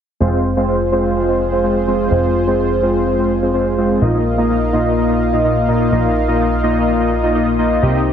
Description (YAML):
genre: house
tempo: 126 BPM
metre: 4/4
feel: straight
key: F minor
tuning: A4 = 440 Hz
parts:
  - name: warm analog pad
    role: sustained chords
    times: 0.2-8.1 s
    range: Bb3 to F5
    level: -20 LUFS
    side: equal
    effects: chorus
  - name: soft supersaw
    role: stabs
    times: 0.2-8.0 s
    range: Bb2 to Eb5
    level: -16 LUFS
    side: equal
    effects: low-pass filter, ping-pong delay
  - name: plucky analog bass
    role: bass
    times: 0.2-8.1 s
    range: F1 to C2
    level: -20 LUFS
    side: equal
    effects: tube saturation
room: moderate lush hall reverb, RT60 2.5 s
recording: heavily compressed radio sound, multiband compression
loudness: -13 LUFS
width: side -8 dB against mid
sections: 0.2-8.1 A section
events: filter sweep on supersaw synth 0.2-8.1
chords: 0.2 Fm; 4.0 Bbsus4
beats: | 0.21 0.68 1.16 1.63 | 2.11 2.59 3.06 3.54 | 4.01 4.49 4.97 5.44 | 5.92 6.40 6.87 7.35 | 7.83